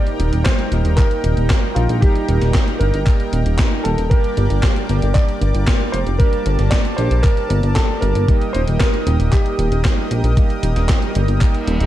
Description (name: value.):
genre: italo disco.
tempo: 115 BPM.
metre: 4/4.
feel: straight.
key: unclear.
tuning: A4 = 444 Hz.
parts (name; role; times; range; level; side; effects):
warm concert grand piano; melody; 0.0-11.9 s; F4 to D5; -25 LUFS; right 1 dB; digital delay.
warm analog pad; sustained chords; 0.0-11.9 s; Eb4 to Eb6; -27 LUFS; equal; chorus, tremolo.
analog synth brass; stabs; 0.0-11.9 s; G3 to G4; -26 LUFS; right 5 dB; chorus.
gated 80s digital drum machine; drums; 0.1-11.9 s; handclaps, hi-hat, snare drum; -26 LUFS; equal; gated reverb, gated reverb snare, small room reverb.
chorused synth bass; bass; 0.2-11.9 s; Eb1 to Bb1; -16 LUFS; equal; tube saturation.
electronic kick drum; drums; 0.5-11.5 s; none; -16 LUFS; equal; small room reverb.
reverse cymbal; sound effects; 11.6-11.9 s; none; -34 LUFS; equal; none.
room: little or no reverb.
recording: dark, warm production.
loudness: -14 LUFS.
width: side -13 dB against mid.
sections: 0.0-11.9 A section.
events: reverse cymbal 11.6.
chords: 0.0 Eb; 4.1 Gm; 8.3 Eb.